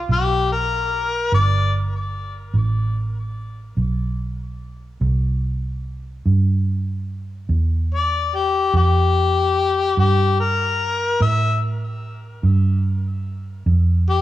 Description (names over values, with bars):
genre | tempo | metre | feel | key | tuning
slow blues | 49 BPM (dotted quarters) | 12/8 | straight | unclear | A4 = 435 Hz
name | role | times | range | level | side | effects
clear harmonica | melody | 0.0-14.2 s | G4 to E5 | -20 LUFS | left 5 dB | overdrive, cassette tape, tape echo
vintage muted fingered electric bass | bass | 0.0-14.2 s | G1 to A2 | -20 LUFS | right 1 dB | none
room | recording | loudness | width
studio ambience | home recording on cassette, small room ambience | -18 LUFS | side -14 dB against mid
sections
0.0-14.2 A section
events
none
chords
0.0 Gadd9; 5.0 C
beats
| 0.09 1.32 2.55 3.79 | 5.02 6.25 7.49 8.72 | 9.96 11.20 12.43 13.66